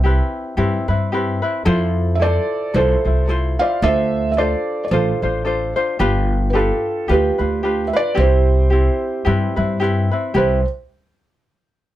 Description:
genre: Hawaiian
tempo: 110 BPM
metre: 4/4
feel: swing 57% on 8ths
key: C major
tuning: A4 = 439 Hz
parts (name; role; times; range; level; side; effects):
- ukulele; accompaniment; 0.0-10.6 s; C4 to C5; -22 LUFS; left 2 dB; none
- upright bass; bass; 0.0-10.6 s; G1 to G2; -18 LUFS; equal; none
- felt-muted upright piano; melody; 2.2-10.6 s; F4 to F5; -19 LUFS; right 2 dB; none
room: light reverb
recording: none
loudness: -16 LUFS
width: side -14 dB against mid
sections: 0.0-10.3 A section; 10.3-12.0 B section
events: none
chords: 0.0 Cmaj7; 1.7 Fmaj7; 3.8 Dm7; 6.0 G7; 8.2 Cmaj7

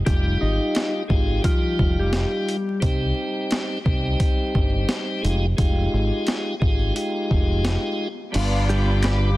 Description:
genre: hip hop, boom-bap hip-hop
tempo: 87 BPM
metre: 4/4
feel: swing 59% on 16ths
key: unclear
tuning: A4 = 440 Hz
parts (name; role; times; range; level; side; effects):
- mellow electric guitar; melody; 0.1-2.8, 8.7-9.4 s; F3 to Eb5; -27 LUFS; left 1 dB; spring reverb, high-pass filter, low-pass filter, tape echo
- tonewheel organ; accompaniment; 0.1-9.3 s; G3 to G4; -26 LUFS; equal; overdrive, slow rotary speaker, cassette tape, high-pass filter, low-pass filter
- deep dub fingered electric bass; bass; 0.1-9.4 s; F1 to C2; -22 LUFS; equal; none
- boom bap sampler-style drum kit; drums; 0.1-9.2 s; crash cymbal, hi-hat, kick drum, shaker, snare drum; -23 LUFS; equal; none
- warm studio string section; sustained chords; 8.3-9.4 s; G4 to D6; -33 LUFS; right 1 dB; high-pass filter, low-pass filter
- warm studio string section; stabs; 8.3-9.2 s; B3 to G4; -28 LUFS; equal; high-pass filter, low-pass filter, tape echo
- finger snap; percussion; 9.0-9.2 s; none; -37 LUFS; left 3 dB; none
room: light reverb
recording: dense, heavily limited modern master, vinyl crackle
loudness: -20 LUFS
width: side -18 dB against mid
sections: 0.0-8.3 A section; 8.3-9.4 B section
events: kick muted 8.3-9.4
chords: 0.0 Fm9; 2.8 Cm; 5.2 Fm9; 8.3 G7

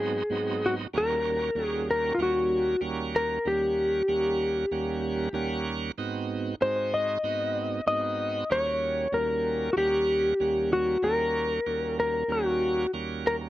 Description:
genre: blues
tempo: 95 BPM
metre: 4/4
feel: straight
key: unclear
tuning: A4 = 440 Hz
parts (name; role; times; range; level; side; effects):
- clean lap steel guitar; melody; 0.0-13.4 s; F4 to Eb5; -26 LUFS; left 1 dB; slapback echo
- bright tonewheel organ; accompaniment; 0.0-13.5 s; Eb2 to F#5; -31 LUFS; right 4 dB; slow rotary speaker, overdrive
room: moderate booth ambience, RT60 0.2 s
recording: dry, close 1970s-style studio recording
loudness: -25 LUFS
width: side -15 dB against mid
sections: 0.0-13.5 A section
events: none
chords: 0.0 Ab7#9; 0.9 Eb7#9; 6.0 Ab7#9; 8.5 Eb7#9

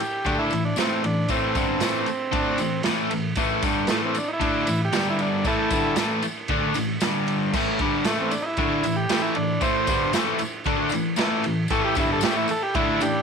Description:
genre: garage rock duo or trio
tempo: 115 BPM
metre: 4/4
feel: straight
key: A minor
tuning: A4 = 441 Hz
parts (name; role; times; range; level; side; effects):
- overdriven combo organ; melody; 0.0-13.2 s; A3 to C5; -26 LUFS; right 2 dB; tape echo
- crunchy overdriven guitar; riff; 0.0-13.2 s; G2 to D4; -23 LUFS; left 1 dB; none
- raw garage drum kit; drums; 0.0-13.1 s; crash cymbal, kick drum, ride cymbal, snare drum; -28 LUFS; right 2 dB; none
- tambourine; percussion; 0.2-13.1 s; none; -38 LUFS; left 16 dB; none
room: moderate plate reverb, RT60 1.4 s, small room ambience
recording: 1960s-style stereo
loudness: -21 LUFS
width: side -6 dB against mid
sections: 0.0-13.2 A section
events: transistor combo organ solo 0.0-13.2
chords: 0.0 Am; 4.9 G5; 5.5 A5; 7.0 G5; 7.5 A5

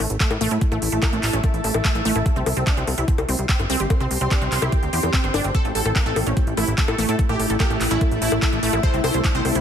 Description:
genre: psychedelic trance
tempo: 146 BPM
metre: 4/4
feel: straight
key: unclear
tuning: A4 = 439 Hz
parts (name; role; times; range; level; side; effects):
- wide unison pluck; riff; 0.0-9.6 s; A3 to C5; -28 LUFS; right 1 dB; auto-pan, sidechain pumping, ping-pong delay
- plucky analog bass; bass; 0.0-9.6 s; G1 to A2; -24 LUFS; equal; none
- big-room dance drum kit; drums; 0.0-9.6 s; bongos, handclaps, hi-hat; -25 LUFS; left 2 dB; overdrive
- granular cloud pad; texture; 0.2-9.6 s; A3 to C6; -28 LUFS; equal; built-in reverb, sidechain pumping
- electronic kick drum; drums; 0.2-9.3 s; none; -20 LUFS; equal; overdrive
- supersaw stab; melody; 5.5-9.5 s; E4 to C5; -27 LUFS; right 2 dB; phaser, sidechain pumping, ping-pong delay
- pulsing gated texture; sustained chords; 5.5-9.6 s; A3 to E4; -29 LUFS; left 2 dB; chorus, built-in reverb, sidechain pumping
- zap; sound effects; 8.7-8.8 s; none; -37 LUFS; left 1 dB; none
room: light reverb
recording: none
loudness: -18 LUFS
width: side -8 dB against mid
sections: 0.0-9.6 A section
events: none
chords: 0.0 A5; 2.3 C5; 5.5 A5; 8.8 C5

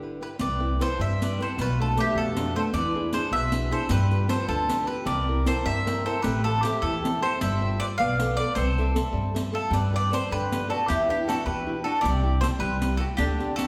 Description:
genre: italian folk, Italian serenade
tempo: 103 BPM (dotted quarters)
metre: 6/8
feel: straight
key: C major, G major from 9.7 s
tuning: A4 = 440 Hz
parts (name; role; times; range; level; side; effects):
- mandolin; melody; 0.0-13.7 s; G4 to F5; -30 LUFS; equal; none
- flamenco guitar; accompaniment; 0.0-13.7 s; B2 to E5; -33 LUFS; equal; none
- upright bass; bass; 0.0-13.6 s; G1 to G2; -30 LUFS; equal; none
- mandolin; second line; 0.2-13.7 s; D4 to D5; -37 LUFS; equal; none
- riq; percussion; 0.4-13.7 s; none; -36 LUFS; equal; none
room: wet recital hall reverb, RT60 1.3 s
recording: recorded in a church or concert hall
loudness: -25 LUFS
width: mono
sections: 0.4-9.7 A section; 9.7-13.7 B section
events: none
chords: 0.4 Cmaj7; 1.6 Bm7b5; 2.7 E7; 3.9 G7; 5.1 C7; 6.2 Am7; 7.4 G7sus4; 8.0 Bm7b5; 8.6 C6; 9.7 G; 10.9 Em7; 12.0 C

